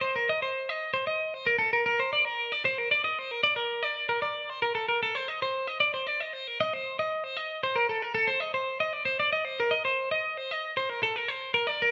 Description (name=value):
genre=rock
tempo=76 BPM (dotted quarters)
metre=6/8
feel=straight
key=unclear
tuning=A4 = 445 Hz
part: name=twelve-string electric guitar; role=solo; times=0.0-11.9 s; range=A4 to Eb5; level=-28 LUFS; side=equal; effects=none
room=moderate large studio reverb, RT60 1.2 s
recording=band playing live in one room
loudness=-28 LUFS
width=mono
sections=0.0-11.3 A section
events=none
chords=none